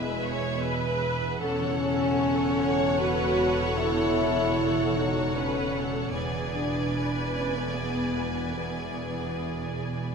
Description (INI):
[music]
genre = cinematic, emotional film score for orchestra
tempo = 76 BPM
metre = 3/4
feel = rubato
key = E major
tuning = A4 = 440 Hz
[part]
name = clear symphonic violin section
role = melody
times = 0.0-10.1 s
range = E5 to G#5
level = -37 LUFS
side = left 2 dB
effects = none
[part]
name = rich chamber violin section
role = second line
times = 0.0-10.1 s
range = G#4 to D5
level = -32 LUFS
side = left 1 dB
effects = none
[part]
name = clear symphonic viola section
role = accompaniment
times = 0.0-10.1 s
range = F#4 to C#5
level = -34 LUFS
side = right 2 dB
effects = none
[part]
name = mellow French horn section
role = sustained chords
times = 0.0-10.1 s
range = E3 to F#4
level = -29 LUFS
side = left 2 dB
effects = none
[part]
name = concert harp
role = arpeggios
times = 0.0-10.1 s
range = E2 to B5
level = -36 LUFS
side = left 6 dB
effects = none
[part]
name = clear symphonic double bass section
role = bass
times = 0.0-10.1 s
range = E1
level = -33 LUFS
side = right 5 dB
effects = none
[part]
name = rich symphonic cello section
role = bass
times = 0.0-10.1 s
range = E2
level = -34 LUFS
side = right 3 dB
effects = none
[sound]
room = wet scoring stage reverb, RT60 1.8 s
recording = minimal, uncompressed stereo recording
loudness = -24 LUFS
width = side -5 dB against mid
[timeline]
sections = 0.0-10.1 A section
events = none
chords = 0.0 E; 1.4 F#m/E; 6.1 E7